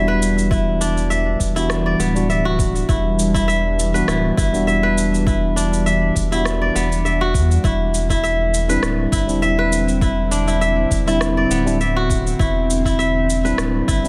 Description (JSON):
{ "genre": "organic downtempo", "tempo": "101 BPM", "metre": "4/4", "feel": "swing 54% on 16ths", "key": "E minor", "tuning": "A4 = 438 Hz", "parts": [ { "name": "bright tine electric piano", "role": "accompaniment", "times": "0.0-14.1 s", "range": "G3 to F#4", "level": "-25 LUFS", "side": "equal", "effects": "sidechain pumping, digital delay" }, { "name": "bowed-like drone", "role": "sustained chords", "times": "0.0-14.1 s", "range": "D3 to E4", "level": "-26 LUFS", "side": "equal", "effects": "built-in reverb, sidechain pumping" }, { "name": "kora", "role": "arpeggios", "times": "0.0-14.1 s", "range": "B3 to E5", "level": "-23 LUFS", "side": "equal", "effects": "digital delay" }, { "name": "round analog bass", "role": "bass", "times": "0.0-14.1 s", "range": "D1 to E2", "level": "-24 LUFS", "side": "equal", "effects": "none" }, { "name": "electronic shaker and rim click", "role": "drums", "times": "0.2-14.1 s", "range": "none", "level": "-30 LUFS", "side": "equal", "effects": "none" }, { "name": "electronic kick drum", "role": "drums", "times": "0.5-14.0 s", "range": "none", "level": "-24 LUFS", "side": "equal", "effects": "none" } ], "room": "light reverb", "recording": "none", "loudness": "-18 LUFS", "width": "mono", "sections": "0.0-14.1 A section", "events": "none", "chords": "0.0 Em7; 7.6 Cadd9" }